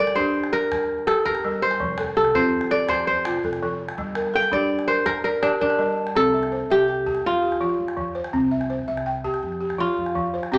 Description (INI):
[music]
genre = west african traditional, West African string and xylophone music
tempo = 110 BPM (dotted quarters)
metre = 12/8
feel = straight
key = F major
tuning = A4 = 440 Hz
[part]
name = kora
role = melody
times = 0.0-10.6 s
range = D4 to G5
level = -24 LUFS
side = equal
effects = none
[part]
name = balafon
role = arpeggios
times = 0.0-10.6 s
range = F3 to A5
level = -27 LUFS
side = equal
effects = none
[part]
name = upright bass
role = bass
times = 0.0-10.6 s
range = F1 to G2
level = -40 LUFS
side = equal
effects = none
[part]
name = calabash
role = percussion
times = 0.1-10.6 s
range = none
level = -37 LUFS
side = equal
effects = none
[sound]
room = wet large studio reverb, RT60 1.2 s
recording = nothing above 10.8 kHz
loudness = -23 LUFS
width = mono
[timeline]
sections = 0.0-6.2 A section; 6.2-10.6 B section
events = kora solo 0.0-6.2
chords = 0.0 Gm; 1.8 F; 4.0 Gm; 6.2 C; 7.2 F; 8.3 C; 9.4 F